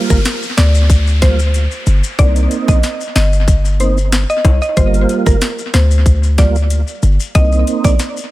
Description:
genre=dancehall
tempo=93 BPM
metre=4/4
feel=straight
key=G minor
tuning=A4 = 439 Hz
part: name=tonewheel organ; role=accompaniment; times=0.0-7.9 s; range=G3 to F4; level=-20 LUFS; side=right 6 dB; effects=chorus vibrato, slow rotary speaker, analog delay
part: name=downlifter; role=sound effects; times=0.0-4.8 s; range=none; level=-27 LUFS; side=equal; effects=none
part: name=mallet-like synth pluck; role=melody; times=0.1-8.0 s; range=Bb4 to Eb5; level=-20 LUFS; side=equal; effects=chorus, analog delay
part: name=hard-hitting 808-style bass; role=bass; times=0.1-8.0 s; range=G1 to D2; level=-12 LUFS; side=equal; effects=none
part: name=island pop drum kit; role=drums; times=0.1-8.2 s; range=hi-hat, kick drum, snare drum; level=-14 LUFS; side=equal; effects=analog delay
part: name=maracas and timbales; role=percussion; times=0.1-8.3 s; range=none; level=-28 LUFS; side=left 8 dB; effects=analog delay
room=little or no reverb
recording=echo-heavy mix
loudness=-11 LUFS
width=side -17 dB against mid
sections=0.0-8.3 A section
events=none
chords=0.0 Gm7; 2.2 Cm7; 4.8 Gm7; 7.3 Cm7

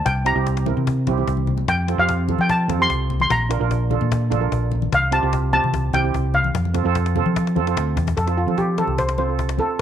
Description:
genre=calypso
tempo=148 BPM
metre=4/4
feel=straight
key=F major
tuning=A4 = 440 Hz
part: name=steel pan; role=melody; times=0.0-9.8 s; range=F4 to C6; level=-21 LUFS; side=left 1 dB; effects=none
part: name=fingered electric bass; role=bass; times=0.1-9.8 s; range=Bb1 to F3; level=-21 LUFS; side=equal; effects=none
part: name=cajon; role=drums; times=0.1-9.7 s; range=none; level=-28 LUFS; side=left 7 dB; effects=none
part: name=steel pan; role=accompaniment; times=0.2-9.8 s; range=C4 to Bb4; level=-25 LUFS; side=right 13 dB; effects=none
part: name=congas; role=percussion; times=0.7-9.7 s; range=none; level=-30 LUFS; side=left 10 dB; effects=none
room=light reverb, small room ambience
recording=1960s-style stereo with parts hard left and right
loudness=-18 LUFS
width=side -10 dB against mid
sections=0.0-8.2 A section; 8.2-9.8 B section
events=drum fill 1.2-1.7, 7.4-8.2; steel pan solo 8.2-9.8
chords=0.1 C7; 1.7 F; 3.3 Bbmaj7; 4.9 Csus4; 5.7 C; 6.5 F

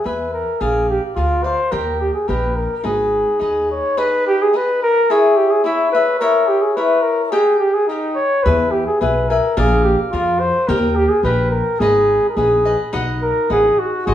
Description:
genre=mexican folk, mariachi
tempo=107 BPM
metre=2/4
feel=straight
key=G# harmonic minor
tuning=A4 = 440 Hz
part: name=mellow trumpet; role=melody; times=0.0-14.1 s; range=D#4 to C#5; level=-16 LUFS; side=equal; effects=none
part: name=cavaquinho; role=accompaniment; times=0.0-14.1 s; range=D#4 to G#5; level=-22 LUFS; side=left 4 dB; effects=none
part: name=upright bass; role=bass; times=0.1-3.8, 8.5-14.1 s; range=G#1 to E#2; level=-21 LUFS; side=equal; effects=none
room=wet studio reverb, RT60 0.8 s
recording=band playing live in one room, studio reverb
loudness=-14 LUFS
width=side -11 dB against mid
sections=0.0-4.0 A section; 4.0-12.9 A section; 12.9-14.1 B section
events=none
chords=0.0 E; 0.6 A#7; 1.7 D#; 2.8 G#m; 5.1 C#m; 6.2 A#dim; 7.3 D#; 8.5 E; 9.6 A#7; 10.7 D#; 11.8 G#m; 12.9 B

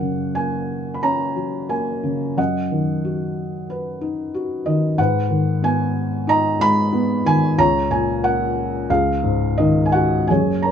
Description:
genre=classical, lyrical solo piano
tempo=91 BPM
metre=4/4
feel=uneven beats, rubato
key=F# major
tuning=A4 = 440 Hz
part: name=felt-muted upright piano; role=solo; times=0.0-10.7 s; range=F#1 to B5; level=-18 LUFS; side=equal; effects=none
room=light reverb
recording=dark, warm production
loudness=-18 LUFS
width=side -8 dB against mid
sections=0.0-10.3 A section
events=none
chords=0.0 F#add9; 2.4 B/F#; 5.0 G#m; 7.6 F#/C#; 8.9 C#add9

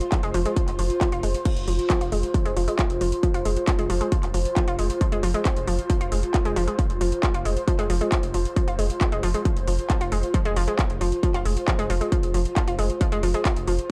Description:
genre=driving peak-time techno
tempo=135 BPM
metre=4/4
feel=straight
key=F minor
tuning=A4 = 444 Hz
part: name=techno drum kit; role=drums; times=0.0-13.9 s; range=crash cymbal, handclaps, hi-hat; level=-34 LUFS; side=equal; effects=sidechain pumping on hats, sidechain pumping on cymbals
part: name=airy breathy pad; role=texture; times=0.0-13.9 s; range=F4 to C6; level=-32 LUFS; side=equal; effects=chorus, sidechain pumping
part: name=analog pluck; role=riff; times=0.1-13.7 s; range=F3 to F4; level=-30 LUFS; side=equal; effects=chorus, tube saturation, sidechain pumping, tape echo
part: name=electronic kick drum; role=drums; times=0.1-13.5 s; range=none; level=-27 LUFS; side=equal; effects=distortion
part: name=warm sub bass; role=bass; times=0.2-13.8 s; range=F1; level=-29 LUFS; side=equal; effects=tube saturation, sidechain pumping, low-pass filter
room=light reverb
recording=dry, gritty hardware recording, cassette tape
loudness=-23 LUFS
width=mono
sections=0.0-13.9 A section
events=none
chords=0.0 F5

